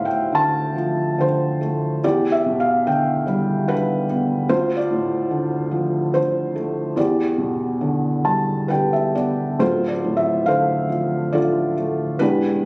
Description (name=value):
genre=classical, lyrical solo piano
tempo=65-74 BPM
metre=3/4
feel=rubato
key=D dorian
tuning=A4 = 440 Hz
part: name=felt-muted upright piano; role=solo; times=0.0-12.7 s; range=D1 to A5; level=-18 LUFS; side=equal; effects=none
room=light reverb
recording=recorded on a phone in the room, studio reverb, nothing above 10.8 kHz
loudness=-18 LUFS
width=side -30 dB against mid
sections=0.0-9.6 A section; 9.6-12.7 A section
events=felt piano fill 7.8-9.6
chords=0.0 Dm7; 2.0 Em7; 4.5 Dm7; 7.0 Em7; 9.6 Dm7